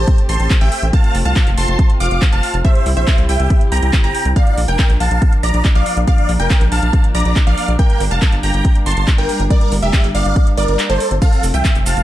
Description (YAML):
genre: uplifting trance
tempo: 140 BPM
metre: 4/4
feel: straight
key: F major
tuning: A4 = 445 Hz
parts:
  - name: big supersaw lead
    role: melody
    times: 0.0-12.0 s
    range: G4 to D6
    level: -21 LUFS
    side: equal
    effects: phaser, sidechain pumping, ping-pong delay
  - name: wide unison pluck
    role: second line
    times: 0.0-12.0 s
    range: C5 to D6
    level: -26 LUFS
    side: right 1 dB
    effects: sidechain pumping, ping-pong delay
  - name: dark chamber string section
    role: sustained chords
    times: 0.0-12.0 s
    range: C3 to G4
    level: -25 LUFS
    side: left 1 dB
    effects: sidechain pumping
  - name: tight sequencer bass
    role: bass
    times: 0.0-12.0 s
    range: F1 to C2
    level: -17 LUFS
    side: equal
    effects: sidechain pumping
  - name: electronic kick drum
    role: drums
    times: 0.1-11.7 s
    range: none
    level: -13 LUFS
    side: equal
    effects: none
  - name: house drum kit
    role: drums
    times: 0.1-12.0 s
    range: crash cymbal, handclaps, hi-hat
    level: -24 LUFS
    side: right 1 dB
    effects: none
  - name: tube shaker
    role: percussion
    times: 11.2-12.0 s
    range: none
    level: -29 LUFS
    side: right 5 dB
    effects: none
room: digital ambience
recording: dark, warm production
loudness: -12 LUFS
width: side -14 dB against mid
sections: 0.0-12.0 A section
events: break 10.8-11.2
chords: 0.0 Am7; 0.9 F; 2.6 C; 4.4 Bb; 7.8 Gm; 11.2 F